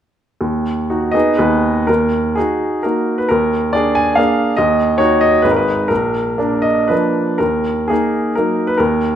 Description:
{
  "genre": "classical, romantic triple-time dance for piano with dotted rhythms",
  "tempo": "112-153 BPM",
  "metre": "3/4",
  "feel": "rubato",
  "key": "Eb minor",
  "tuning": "A4 = 439 Hz",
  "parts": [
    { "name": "clear baby grand piano", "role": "solo", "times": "0.4-9.2 s", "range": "Ab1 to Ab5", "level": "-13 LUFS", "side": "equal", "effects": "none" }
  ],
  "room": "moderate recital hall reverb, RT60 1.4 s",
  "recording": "minimal, uncompressed stereo recording",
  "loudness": "-13 LUFS",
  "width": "side -10 dB against mid",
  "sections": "0.4-1.9 A section; 1.9-9.2 B section",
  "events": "none",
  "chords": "0.4 Ebm; 1.1 Abm; 1.9 Ebm; 3.3 Bb7/Eb; 4.6 Ebm; 5.5 Abm; 5.9 Bb; 7.4 Ebm"
}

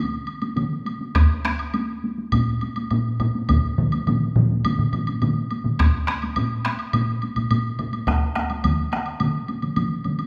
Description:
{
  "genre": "japanese traditional, taiko drum ensemble",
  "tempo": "104 BPM",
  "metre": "4/4",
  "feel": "straight",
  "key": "none",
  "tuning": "none",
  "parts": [
    { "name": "woodblock", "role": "percussion", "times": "0.3-10.3 s", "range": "none", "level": "-33 LUFS", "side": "equal", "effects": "none" },
    { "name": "taiko ensemble", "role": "percussion", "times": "0.4-10.3 s", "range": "none", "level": "-29 LUFS", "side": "equal", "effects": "none" },
    { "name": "taiko ensemble", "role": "percussion", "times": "0.6-10.2 s", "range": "none", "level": "-28 LUFS", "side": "equal", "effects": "none" },
    { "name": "taiko ensemble", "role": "percussion", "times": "1.1-7.9 s", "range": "none", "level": "-26 LUFS", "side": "equal", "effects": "none" },
    { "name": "taiko ensemble", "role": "percussion", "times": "1.2-8.8 s", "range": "none", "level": "-24 LUFS", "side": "equal", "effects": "none" }
  ],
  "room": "wet recital hall reverb, RT60 1.4 s",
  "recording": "none",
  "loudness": "-23 LUFS",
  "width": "mono",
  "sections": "0.0-5.8 A section; 5.8-10.3 B section",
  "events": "speeding up 0.0-10.3",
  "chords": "none"
}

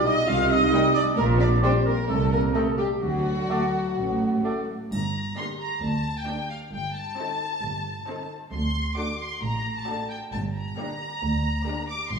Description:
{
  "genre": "cinematic, playful, whimsical film cue",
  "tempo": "133 BPM",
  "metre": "4/4",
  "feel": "straight",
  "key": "G minor",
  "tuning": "A4 = 445 Hz",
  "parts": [
    { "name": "mellow clarinet", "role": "second line", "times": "0.0-4.7 s", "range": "F#4 to F5", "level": "-30 LUFS", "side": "left 1 dB", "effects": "none" },
    { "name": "mellow hollow large flute ensemble", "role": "second line", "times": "0.0-4.6 s", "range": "F#5 to F6", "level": "-28 LUFS", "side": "right 2 dB", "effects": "none" },
    { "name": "rich chamber violin section", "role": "second line", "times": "0.0-12.0 s", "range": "F#4 to F5", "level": "-33 LUFS", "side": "left 2 dB", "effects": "none" },
    { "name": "mellow French horn section", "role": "sustained chords", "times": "0.0-4.6 s", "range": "F#3 to F4", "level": "-27 LUFS", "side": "left 1 dB", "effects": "none" },
    { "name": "clear studio double bass section", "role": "bass", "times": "0.3-12.2 s", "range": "G1 to D2", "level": "-30 LUFS", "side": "right 1 dB", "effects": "none" },
    { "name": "mellow tuba", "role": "bass", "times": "0.3-4.4 s", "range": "A1 to D2", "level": "-29 LUFS", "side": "right 3 dB", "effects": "none" },
    { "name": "rich studio cello section", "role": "bass", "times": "0.3-12.2 s", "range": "D2 to D3", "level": "-30 LUFS", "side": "right 2 dB", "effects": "none" },
    { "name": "clear studio violin section", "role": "melody", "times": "0.7-12.2 s", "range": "D4 to D6", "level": "-32 LUFS", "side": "left 1 dB", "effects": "none" },
    { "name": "warm oboe", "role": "second line", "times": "0.7-4.6 s", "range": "D5 to Eb5", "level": "-36 LUFS", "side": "right 3 dB", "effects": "none" },
    { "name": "clear bassoon", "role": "accompaniment", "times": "0.7-4.6 s", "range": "G3 to A3", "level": "-32 LUFS", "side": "left 1 dB", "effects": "none" },
    { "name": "rich chamber viola section", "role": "accompaniment", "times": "0.7-12.0 s", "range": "G3 to Eb4", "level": "-36 LUFS", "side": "equal", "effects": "none" },
    { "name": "triangle", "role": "percussion", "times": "4.9-5.8 s", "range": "none", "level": "-46 LUFS", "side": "left 3 dB", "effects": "none" }
  ],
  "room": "wet recital hall reverb, RT60 1.5 s",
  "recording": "recorded in a church or concert hall, small room ambience",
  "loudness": "-23 LUFS",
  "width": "side -5 dB against mid",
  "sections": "0.0-4.9 A section; 4.9-12.2 B section",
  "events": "none",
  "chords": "0.3 Cm; 1.2 Gm/Bb; 2.1 Adim/C; 3.0 D; 4.9 Gm; 6.7 Adim/G; 8.5 D; 10.3 Gm"
}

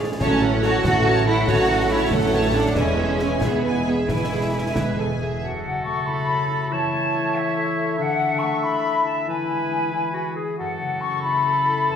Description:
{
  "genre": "cinematic, heroic adventure film score",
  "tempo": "93 BPM (dotted quarters)",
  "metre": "6/8",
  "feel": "straight",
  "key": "F# minor from 5.4 s",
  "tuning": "A4 = 440 Hz",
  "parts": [
    { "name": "clear trombone section", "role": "sustained chords", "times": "0.0-5.2 s", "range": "E3 to A3", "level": "-28 LUFS", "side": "right 2 dB", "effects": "none" },
    { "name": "concert harp", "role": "arpeggios", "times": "0.0-12.0 s", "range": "E2 to D5", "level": "-28 LUFS", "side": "left 4 dB", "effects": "none" },
    { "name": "rich symphonic violin section", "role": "melody", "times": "0.2-5.4 s", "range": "E5 to A5", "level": "-30 LUFS", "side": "left 2 dB", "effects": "none" },
    { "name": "rich symphonic violin section", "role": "second line", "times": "0.2-5.4 s", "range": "G#4 to C#5", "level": "-30 LUFS", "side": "right 2 dB", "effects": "none" },
    { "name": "warm symphonic viola section", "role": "accompaniment", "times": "0.2-5.4 s", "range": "E4 to B4", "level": "-30 LUFS", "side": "right 2 dB", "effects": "none" },
    { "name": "clear symphonic double bass section", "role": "bass", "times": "0.2-5.3 s", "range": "E1 to A1", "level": "-25 LUFS", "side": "right 2 dB", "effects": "none" },
    { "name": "rich symphonic cello section", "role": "bass", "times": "0.2-4.7 s", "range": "A3 to F#4", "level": "-23 LUFS", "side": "right 2 dB", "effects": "none" },
    { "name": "concert snare drum, clash cymbals and concert bass drum", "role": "drums", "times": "0.2-5.0 s", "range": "none", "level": "-27 LUFS", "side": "equal", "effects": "none" },
    { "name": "bright clarinet", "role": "second line", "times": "5.4-12.0 s", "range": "D4 to G#4", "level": "-30 LUFS", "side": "left 3 dB", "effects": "none" },
    { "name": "clear oboe", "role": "second line", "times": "5.4-12.0 s", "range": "A4 to E5", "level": "-29 LUFS", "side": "equal", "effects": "none" },
    { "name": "mellow small flute group", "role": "second line", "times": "5.4-12.0 s", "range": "E5 to C#6", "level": "-23 LUFS", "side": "left 2 dB", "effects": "none" }
  ],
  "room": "wet recital hall reverb, RT60 1.5 s",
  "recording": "recorded in a church or concert hall",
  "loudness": "-19 LUFS",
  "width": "side -8 dB against mid",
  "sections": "0.0-5.4 A section; 5.4-12.0 B section",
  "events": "none",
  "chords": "0.2 F#m/A; 2.8 E; 5.4 F#m7; 6.7 A/E; 8.0 Dadd9; 9.3 E; 10.6 F#m7"
}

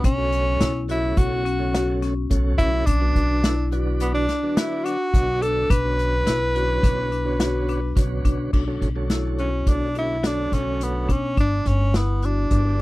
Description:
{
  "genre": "progressive instrumental, band music in an uneven meter",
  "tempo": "106 BPM",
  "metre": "5/4",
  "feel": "straight",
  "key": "B minor",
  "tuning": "A4 = 440 Hz",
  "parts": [
    { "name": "tonewheel organ", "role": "accompaniment", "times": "0.0-12.8 s", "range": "C#3 to D4", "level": "-30 LUFS", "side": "right 3 dB", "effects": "fast rotary speaker" },
    { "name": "marimba with hard mallets", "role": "arpeggios", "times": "0.0-12.8 s", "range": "C#4 to F#4", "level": "-30 LUFS", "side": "left 8 dB", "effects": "none" },
    { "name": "upright bass", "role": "bass", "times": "0.0-12.8 s", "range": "G1 to B2", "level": "-24 LUFS", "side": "equal", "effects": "none" },
    { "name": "unplugged drum kit", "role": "drums", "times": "0.0-12.8 s", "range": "crash cymbal, hi-hat, kick drum, snare drum", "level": "-21 LUFS", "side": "equal", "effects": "none" },
    { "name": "warm tenor saxophone", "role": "melody", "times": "0.1-12.8 s", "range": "B3 to B4", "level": "-24 LUFS", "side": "equal", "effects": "none" }
  ],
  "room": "little or no reverb",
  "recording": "dry, close 1970s-style studio recording",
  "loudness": "-19 LUFS",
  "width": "side -18 dB against mid",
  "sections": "0.0-8.5 A section; 8.5-12.8 B section",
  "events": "none",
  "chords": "0.0 F#m/B; 2.9 Bm; 5.7 Bmadd9; 8.5 Bm7; 11.4 G"
}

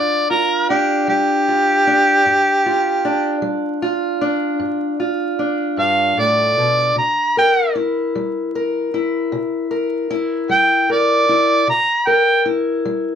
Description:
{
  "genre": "acoustic country blues, solo or duo",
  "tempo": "51 BPM (dotted quarters)",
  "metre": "12/8",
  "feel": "straight",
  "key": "unclear",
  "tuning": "A4 = 441 Hz",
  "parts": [
    { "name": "mellow harmonica", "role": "melody", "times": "0.0-12.4 s", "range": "G4 to Bb5", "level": "-14 LUFS", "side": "right 1 dB", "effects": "none" },
    { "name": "fingerpicked steel-string acoustic guitar", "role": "accompaniment", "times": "0.0-13.2 s", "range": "G2 to Bb4", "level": "-19 LUFS", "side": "left 1 dB", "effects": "none" }
  ],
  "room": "moderate studio reverb, RT60 0.5 s",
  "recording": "vinyl crackle",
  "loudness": "-15 LUFS",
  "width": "side -8 dB against mid",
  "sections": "0.0-13.2 A section",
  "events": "none",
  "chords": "0.0 G7(no3); 7.0 C7"
}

